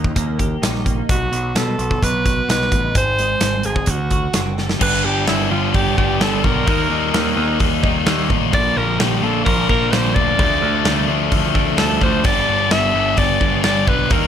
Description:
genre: quiet-loud alternative rock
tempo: 129 BPM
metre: 4/4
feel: straight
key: unclear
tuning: A4 = 438 Hz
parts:
  - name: twelve-string electric guitar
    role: arpeggios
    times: 0.0-12.2 s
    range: G2 to G4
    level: -26 LUFS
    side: right 2 dB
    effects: analog chorus
  - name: growling picked electric bass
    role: bass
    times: 0.0-14.3 s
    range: F#1 to B2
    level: -23 LUFS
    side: equal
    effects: overdrive
  - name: big rock drum kit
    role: drums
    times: 0.0-14.2 s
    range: crash cymbal, hi-hat, kick drum, snare drum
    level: -20 LUFS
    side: equal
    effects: none
  - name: bright alto saxophone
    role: melody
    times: 1.1-14.3 s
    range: E4 to E5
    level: -20 LUFS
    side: equal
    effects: slapback echo
  - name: crunchy overdriven guitar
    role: riff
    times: 4.8-14.3 s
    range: G2 to Eb4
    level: -24 LUFS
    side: right 13 dB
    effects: none
  - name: fuzz guitar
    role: riff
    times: 4.8-14.3 s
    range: G2 to Eb4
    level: -21 LUFS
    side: left 15 dB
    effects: distortion
room: little or no reverb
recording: none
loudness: -15 LUFS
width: side -9 dB against mid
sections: 0.0-4.8 A section; 4.8-14.3 B section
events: drum fill 4.6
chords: 0.0 Eb; 1.1 B; 3.0 Ab; 3.9 D7; 4.8 G; 6.7 Eb; 8.5 Bb; 10.4 Dm; 12.2 G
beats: 0.16 0.62 | 1.09 1.55 2.02 2.48 | 2.95 3.42 3.88 4.34 | 4.81 5.28 5.74 6.21 | 6.67 7.14 7.60 8.06 | 8.53 8.99 9.46 9.92 | 10.39 10.85 11.32 11.78 | 12.25 12.71 13.18 13.64 | 14.10

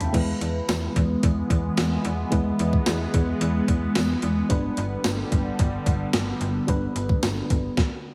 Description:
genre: 1980s-style pop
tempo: 110 BPM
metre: 4/4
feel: straight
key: unclear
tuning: A4 = 440 Hz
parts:
  - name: FM electric piano with tremolo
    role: accompaniment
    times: 0.0-7.8 s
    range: G3 to B5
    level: -31 LUFS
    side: equal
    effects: none
  - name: slap-like FM bass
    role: bass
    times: 0.0-7.7 s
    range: G1 to E2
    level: -30 LUFS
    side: equal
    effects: none
  - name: clean 12-bit digital drum machine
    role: drums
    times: 0.0-7.9 s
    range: crash cymbal, hi-hat, kick drum, snare drum, toms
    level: -27 LUFS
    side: equal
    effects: overdrive
  - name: phased analog pad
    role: sustained chords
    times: 0.9-7.7 s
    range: D3 to B3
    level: -31 LUFS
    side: equal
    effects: phaser, chorus
  - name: tambourine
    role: percussion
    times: 0.7-7.4 s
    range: none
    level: -45 LUFS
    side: equal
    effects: none
room: moderate lush hall reverb, RT60 1.9 s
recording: dreamy mix soaked in reverb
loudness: -24 LUFS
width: mono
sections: 0.1-8.1 A section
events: none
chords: 0.1 E; 4.5 G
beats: | 0.14 0.68 1.23 1.77 | 2.32 2.87 3.41 3.96 | 4.50 5.05 5.59 6.14 | 6.68 7.23 7.78

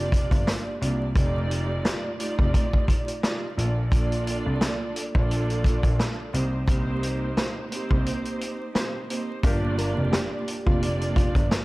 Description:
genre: hip hop, boom-bap hip-hop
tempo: 87 BPM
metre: 4/4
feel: swing 55% on 16ths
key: G minor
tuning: A4 = 440 Hz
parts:
  - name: warm studio string section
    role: accompaniment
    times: 0.0-11.6 s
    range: A3 to D5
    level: -29 LUFS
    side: right 2 dB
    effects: cassette tape, high-pass filter, low-pass filter
  - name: dark grand piano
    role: bass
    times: 0.0-11.5 s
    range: F1 to C2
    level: -27 LUFS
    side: equal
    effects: none
  - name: vintage drum kit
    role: drums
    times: 0.1-11.6 s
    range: hi-hat, kick drum, snare drum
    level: -24 LUFS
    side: equal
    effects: none
  - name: warm saxophone section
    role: stabs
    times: 9.4-9.7 s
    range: F4 to Bb4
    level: -39 LUFS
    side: left 2 dB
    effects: high-pass filter, low-pass filter, digital delay
  - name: nylon-string guitar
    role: melody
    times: 9.8-11.3 s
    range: F4 to Bb4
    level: -32 LUFS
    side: equal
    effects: high-pass filter, low-pass filter, digital delay
room: studio ambience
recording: dark, warm production, vinyl crackle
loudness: -22 LUFS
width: side -21 dB against mid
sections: 0.0-9.4 A section; 9.4-11.6 B section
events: break 8.1-9.4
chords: 0.0 Gm7; 1.2 F13; 3.6 Bbmaj7; 6.3 Cm7; 9.4 Gm7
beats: 0.47 | 1.16 1.85 2.54 3.23 | 3.92 4.61 5.30 5.99 | 6.68 7.37 8.06 8.75 | 9.44 10.13 10.82 11.51

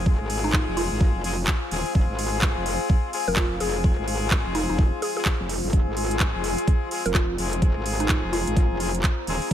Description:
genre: bass house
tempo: 127 BPM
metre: 4/4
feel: swing 61% on 16ths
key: F minor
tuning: A4 = 442 Hz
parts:
  - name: brilliant horn section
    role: stabs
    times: 0.0-9.5 s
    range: Ab3 to Ab4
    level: -31 LUFS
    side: left 6 dB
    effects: sidechain pumping, ping-pong delay
  - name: metallic wobble bass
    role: bass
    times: 0.0-9.5 s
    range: Eb1 to Ab1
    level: -28 LUFS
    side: equal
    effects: distortion, chorus, sidechain pumping
  - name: deep dark ambient pad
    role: texture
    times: 0.0-9.5 s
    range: F4 to Bb5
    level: -32 LUFS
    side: left 1 dB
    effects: chorus, built-in reverb, sidechain pumping
  - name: electronic kick drum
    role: drums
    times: 0.1-9.5 s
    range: none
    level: -21 LUFS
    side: equal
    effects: none
  - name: house drum kit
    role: drums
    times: 0.3-9.5 s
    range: handclaps, hi-hat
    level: -29 LUFS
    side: right 1 dB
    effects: none
  - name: mallet-like synth pluck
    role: melody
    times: 0.4-9.0 s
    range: Eb4 to Bb4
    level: -30 LUFS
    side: equal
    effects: chorus, ping-pong delay
room: little or no reverb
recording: none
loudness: -21 LUFS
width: side -10 dB against mid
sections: 0.0-9.5 A section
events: none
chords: 0.0 Fm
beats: | 0.06 0.53 1.01 1.48 | 1.95 2.42 2.90 3.37 | 3.84 4.31 4.79 5.26 | 5.73 6.20 6.67 7.15 | 7.62 8.09 8.56 9.04 | 9.51

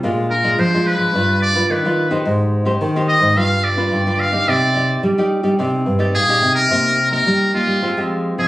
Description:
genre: samba and choro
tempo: 108 BPM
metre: 4/4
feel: straight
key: C minor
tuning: A4 = 440 Hz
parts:
  - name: nylon-string guitar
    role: accompaniment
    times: 0.0-8.5 s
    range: Bb2 to D5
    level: -21 LUFS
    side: equal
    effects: none
  - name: nylon-string guitar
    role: bass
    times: 0.0-8.5 s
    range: G2 to G3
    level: -19 LUFS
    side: equal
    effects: none
  - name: trumpet with metal mute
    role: melody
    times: 0.3-8.5 s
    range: F4 to F5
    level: -16 LUFS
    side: equal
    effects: none
room: light reverb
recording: recorded on a phone in the room, club reverb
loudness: -14 LUFS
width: side -16 dB against mid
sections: 0.0-6.7 A section; 6.7-8.5 B section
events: muted trumpet solo 0.0-6.7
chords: 0.0 Bb7; 1.1 G7; 2.3 Abmaj7; 3.4 G7; 4.5 Cmadd9; 6.7 Cm7; 7.8 Fmadd9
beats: | 0.03 0.59 1.14 1.70 | 2.25 2.81 3.37 3.92 | 4.48 5.04 5.59 6.15 | 6.71 7.27 7.83 8.38

